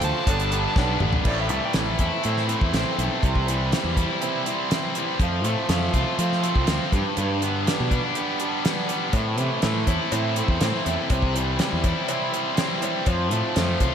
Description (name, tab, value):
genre	classic rock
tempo	122 BPM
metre	4/4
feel	straight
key	C major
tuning	A4 = 439 Hz
part	mellow harmonica	melody	0.0-1.0 s	A5	-32 LUFS	right 3 dB	tape echo
part	picked acoustic archtop guitar	accompaniment	0.0-13.9 s	A2 to C5	-31 LUFS	right 4 dB	slapback echo
part	tight distorted guitar	riff	0.0-13.9 s	F2 to F4	-27 LUFS	left 10 dB	distortion
part	tight distorted guitar	riff	0.0-13.9 s	F2 to B4	-29 LUFS	right 10 dB	distortion, slapback echo
part	fuzz fingered electric bass	bass	0.0-13.9 s	G1 to F3	-26 LUFS	equal	overdrive
part	damped 70s drum kit	drums	0.0-13.9 s	crash cymbal, hi-hat, kick drum, snare drum, toms	-26 LUFS	equal	none
part	cowbell	percussion	0.3-0.9, 9.1-13.9 s	none	-37 LUFS	left 8 dB	none
part	clean lap steel guitar	second line	1.3-3.0 s	D5 to G5	-34 LUFS	left 2 dB	tape echo
room	moderate concert hall reverb, RT60 2.4 s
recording	big arena sound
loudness	-21 LUFS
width	side -8 dB against mid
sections	0.0-1.3 A section; 1.3-13.9 B section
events	drum fill 0.8-1.3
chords	0.3 Gadd9; 1.3 Am; 3.2 C; 5.2 F; 6.9 G; 9.1 Am; 11.1 C; 13.1 F